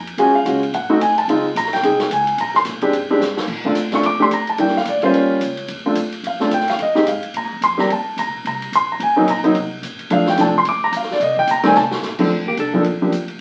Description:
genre	jazz, small-group swing and bop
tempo	218 BPM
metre	4/4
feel	swing 59% on 8ths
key	Bb major from 3.5 s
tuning	A4 = 440 Hz
part	upright bass	bass	0.0-13.4 s	Ab1 to C3	-36 LUFS	equal	none
part	swinging big-band drum kit	drums	0.1-13.3 s	crash cymbal, hi-hat, kick drum, ride cymbal, snare drum	-30 LUFS	equal	none
part	warm concert grand piano	accompaniment	0.2-13.1 s	D3 to D6	-18 LUFS	equal	none
part	vintage hollow-body jazz guitar	melody	12.5-12.8 s	G4 to A4	-26 LUFS	equal	none
part	breathy alto saxophone	second line	12.5-12.8 s	Bb3 to D4	-27 LUFS	equal	none
room	wet studio reverb, RT60 0.5 s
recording	very old 78 rpm record, vinyl crackle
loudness	-18 LUFS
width	mono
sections	0.0-3.5 A section; 3.5-12.3 A section; 12.3-13.4 B section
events	drum fill 3.2, 11.7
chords	0.2 Ebm11; 0.7 Ab7b9; 1.3 Dbmaj9; 2.4 Bb13; 3.5 Bbmaj7; 4.6 Em7b5; 5.1 Eb9; 5.7 Dm7; 6.8 Fm7; 7.3 Bb5; 7.9 Eb5; 9.0 Ab9; 10.1 Bbmaj7; 11.2 Cm7; 11.7 F; 12.3 Bbmaj7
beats	| 0.17 0.45 0.73 1.00 | 1.28 1.55 1.83 2.10 | 2.38 2.65 2.93 3.21 | 3.48 3.76 4.03 4.31 | 4.58 4.86 5.13 5.41 | 5.69 5.96 6.24 6.51 | 6.79 7.07 7.34 7.62 | 7.89 8.17 8.44 8.72 | 8.99 9.27 9.54 9.82 | 10.10 10.37 10.65 10.92 | 11.20 11.47 11.75 12.02 | 12.30 12.57 12.85 13.12

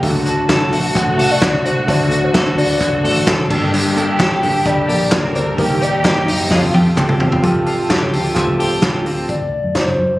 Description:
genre	jangly indie pop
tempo	130 BPM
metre	4/4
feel	straight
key	unclear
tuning	A4 = 440 Hz
part	warm studio violin section	second line	0.0-7.4 s	C4 to Bb4	-24 LUFS	equal	none
part	electric guitar through a small old amp	accompaniment	0.0-9.3 s	G2 to A4	-25 LUFS	right 2 dB	none
part	reed electric piano	accompaniment	0.0-9.3 s	A3 to C5	-22 LUFS	right 1 dB	none
part	clean electric guitar	arpeggios	0.0-9.8 s	G2 to A4	-21 LUFS	left 2 dB	lush chorus
part	vintage muted fingered electric bass	bass	0.0-10.2 s	G1 to F#2	-22 LUFS	equal	none
part	vintage drum kit	drums	0.0-9.9 s	crash cymbal, hi-hat, kick drum, snare drum, toms	-18 LUFS	equal	none
part	warbly nostalgic lead	melody	0.3-10.2 s	Bb4 to A5	-21 LUFS	left 1 dB	chorus, plate reverb, digital delay
part	group handclap	percussion	0.5-8.9 s	none	-26 LUFS	equal	none
room	moderate club reverb, RT60 0.5 s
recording	recorded on a phone in the room, club reverb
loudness	-13 LUFS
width	side -17 dB against mid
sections	0.0-7.4 A section; 7.4-9.3 B section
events	drum fill 6.5-7.4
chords	0.0 D; 3.5 Gmadd9; 5.6 Eb; 6.5 Fadd9; 9.3 D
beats	| 0.03 0.49 0.95 1.42 | 1.88 2.35 2.81 3.27 | 3.73 4.20 4.66 5.12 | 5.58 6.05 6.51 6.97 | 7.43 7.90 8.36 8.83 | 9.29 9.75

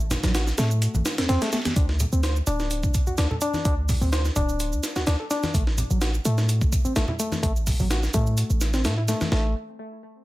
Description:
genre	breakbeat, breaks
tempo	127 BPM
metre	4/4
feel	swing 53% on 16ths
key	A dorian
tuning	A4 = 439 Hz
part	warm 808-style bass	bass	0.0-9.5 s	D1 to A2	-24 LUFS	equal	tube saturation
part	shaker	drums	0.0-9.3 s	none	-36 LUFS	right 5 dB	overdrive
part	breakbeat sampler-style drum kit	drums	0.1-9.4 s	hi-hat, kick drum, snare drum	-26 LUFS	equal	none
part	congas	percussion	0.1-9.3 s	none	-31 LUFS	equal	none
part	bright reed electric piano	riff	0.2-9.5 s	F#3 to C5	-28 LUFS	left 1 dB	overdrive, low-pass filter, tape echo
room	light reverb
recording	dense, heavily limited modern master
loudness	-21 LUFS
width	side -17 dB against mid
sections	0.0-1.8 A section; 1.8-9.3 B section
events	kick drops out 0.8-1.8; filter sweep on reed electric piano 1.8-9.3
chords	0.0 Am; 1.8 N.C.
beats	0.35 0.82 1.29 | 1.76 2.24 2.71 3.18 | 3.65 4.13 4.60 5.07 | 5.54 6.01 6.49 6.96 | 7.43 7.91 8.38 8.85 | 9.32

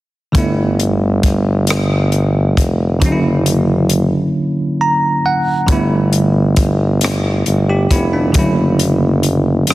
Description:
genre	slow six-eight R&B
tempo	45 BPM (dotted quarters)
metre	6/8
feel	straight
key	unclear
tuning	A4 = 440 Hz
part	bell-like tine electric piano	accompaniment	0.3-9.7 s	D3 to A#5	-16 LUFS	right 1 dB	medium stereo tremolo
part	warm tuba	bass	0.3-9.7 s	F1 to G1	-15 LUFS	equal	none
part	compact cocktail drum kit	drums	0.3-9.7 s	hi-hat, kick drum, rim click	-16 LUFS	left 1 dB	none
room	light reverb, studio reverb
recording	heavily compressed radio sound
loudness	-12 LUFS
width	side -17 dB against mid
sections	0.3-5.7 A section; 5.7-9.7 B section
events	drums muted 4.3-5.7; tine electric piano fill 4.3-5.7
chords	0.3 G69; 3.0 F#7b13; 5.7 G69; 8.3 F#7b13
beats	| 0.35 1.68 | 3.02 4.35 | 5.68 7.02 | 8.35 9.68

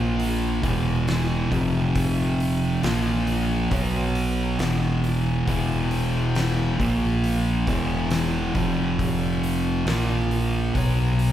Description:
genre	stoner and doom metal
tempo	68 BPM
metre	4/4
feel	straight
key	unclear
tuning	A4 = 439 Hz
part	thick fuzz guitar	riff	0.0-11.3 s	E2 to B3	-26 LUFS	left 3 dB	distortion
part	thick fuzz guitar	riff	0.0-11.3 s	E2 to B3	-24 LUFS	right 3 dB	distortion
part	growling fingered electric bass	bass	0.0-11.3 s	E1 to B1	-29 LUFS	left 1 dB	overdrive
part	oversized low-tuned drum kit	drums	0.2-11.3 s	hi-hat, kick drum, snare drum	-29 LUFS	left 1 dB	none
room	light reverb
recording	band playing live in one room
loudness	-21 LUFS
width	side -11 dB against mid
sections	0.0-11.3 A section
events	none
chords	0.0 A#5; 0.6 E5; 1.5 F5; 2.8 A#5; 3.7 B5; 4.6 E5; 6.8 A#5; 7.7 E5; 8.5 F5; 9.9 A#5; 10.7 B5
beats	0.18 1.06 | 1.94 2.82 3.70 4.58 | 5.46 6.34 7.23 8.11 | 8.99 9.87 10.75

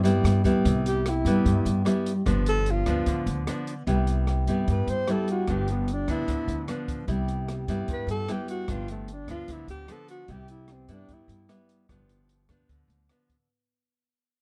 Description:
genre	bossa nova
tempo	150 BPM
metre	4/4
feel	straight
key	C major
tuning	A4 = 436 Hz
part	breathy alto saxophone	melody	0.0-11.5 s	A3 to C5	-33 LUFS	equal	none
part	nylon-string guitar	accompaniment	0.0-13.5 s	G2 to E4	-29 LUFS	equal	none
part	upright bass	bass	0.0-13.1 s	G1 to G2	-30 LUFS	equal	none
part	open jazz drum kit	drums	0.1-13.4 s	hi-hat, kick drum, rim click	-36 LUFS	equal	none
room	light reverb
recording	dark, warm production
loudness	-26 LUFS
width	mono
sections	0.6-13.5 A section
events	fade-out 0.6-13.5; alto saxophone solo 0.6-13.5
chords	0.0 Cmaj7; 2.3 G7; 3.9 Cmaj7; 5.5 G7; 7.1 Cmaj7; 8.7 G7; 10.3 Cmaj7; 11.9 G7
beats	0.24 | 0.65 1.05 1.45 1.85 | 2.26 2.66 3.06 3.46 | 3.87 4.27 4.67 5.07 | 5.47 5.87 6.28 6.68 | 7.08 7.48 7.88 8.28 | 8.68 9.08 9.48 9.88 | 10.29 10.69 11.09 11.49 | 11.89 12.29 12.69 13.09

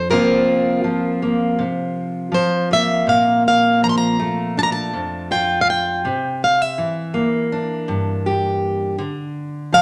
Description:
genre	acoustic folk-pop ballad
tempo	81 BPM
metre	4/4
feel	straight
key	unclear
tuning	A4 = 441 Hz
part	picked plugged-in swing-style acoustic guitar	melody	0.0-9.8 s	Bb4 to C6	-20 LUFS	equal	none
part	fingerpicked steel-string acoustic guitar	accompaniment	0.0-9.8 s	F2 to G4	-22 LUFS	equal	none
room	moderate large studio reverb, RT60 1.2 s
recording	none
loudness	-19 LUFS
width	mono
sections	0.0-9.8 A section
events	none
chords	0.1 C7sus4; 3.1 Bbmaj7; 6.0 C9; 9.0 N.C.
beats	| 0.10 0.84 1.59 2.33 | 3.07 3.82 4.56 5.30 | 6.04 6.78 7.51 8.25 | 8.99 9.73

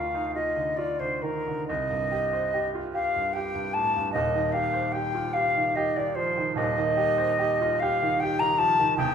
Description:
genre	classical, romantic duo for flute and grand piano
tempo	74 BPM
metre	3/4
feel	uneven beats, rubato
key	unclear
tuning	A4 = 440 Hz
part	silver concert flute	melody	0.0-9.1 s	Bb4 to Bb5	-25 LUFS	left 2 dB	none
part	bright grand piano	accompaniment	0.0-9.1 s	Eb1 to C5	-29 LUFS	right 3 dB	none
room	moderate recital hall reverb, RT60 1.7 s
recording	minimal, uncompressed stereo recording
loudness	-23 LUFS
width	side -7 dB against mid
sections	0.0-9.1 A section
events	none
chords	0.0 Bb/D; 1.7 Cm; 4.1 Cm/Eb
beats	0.78 | 1.69 2.53 3.35 | 4.14 4.94 5.76 | 6.57 7.39 8.21 | 8.99

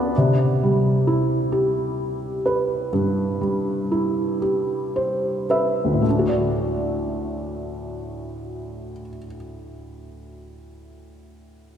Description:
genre	folk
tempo	35-44 BPM (dotted quarters)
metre	6/8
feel	straight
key	D major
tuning	A4 = 439 Hz
part	felt-muted upright piano	solo	0.0-11.8 s	D2 to B5	-21 LUFS	equal	none
room	wet church reverb, RT60 3.0 s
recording	recorded in a church or concert hall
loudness	-20 LUFS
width	side -8 dB against mid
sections	0.1-6.1 A section; 6.1-9.4 B section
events	slowing down 0.1-6.1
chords	0.1 Cmaj7; 6.1 D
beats	| 0.14 1.52 | 2.93 4.42 | 6.06 7.75

